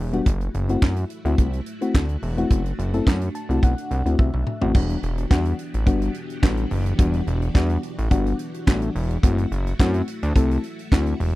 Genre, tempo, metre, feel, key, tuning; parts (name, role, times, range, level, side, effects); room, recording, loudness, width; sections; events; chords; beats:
early-eighties boogie funk; 107 BPM; 4/4; straight; E minor; A4 = 440 Hz
string machine, full ensemble; sustained chords; 0.0-11.4 s; E3 to G4; -34 LUFS; equal; ensemble chorus
fat analog bass; bass; 0.0-11.4 s; E1 to F#2; -23 LUFS; equal
mellow FM electric piano; accompaniment; 0.1-11.2 s; G3 to A5; -24 LUFS; left 3 dB; chorus
tight funk drum kit; drums; 0.1-11.3 s; crash cymbal, handclaps, hi-hat, kick drum, snare drum, toms; -18 LUFS; equal
little or no reverb; dry, close 1970s-style studio recording; -19 LUFS; side -18 dB against mid
0.0-4.8 A section; 4.8-11.4 B section
FM electric piano fill 3.1-4.8; drum fill 4.2-4.8
0.3 F#m7b5; 4.8 Em9; 9.2 F#m7b5
| 0.26 0.82 1.39 1.95 | 2.51 3.07 3.63 4.19 | 4.75 5.31 5.87 6.43 | 6.99 7.55 8.11 8.68 | 9.24 9.80 10.36 10.92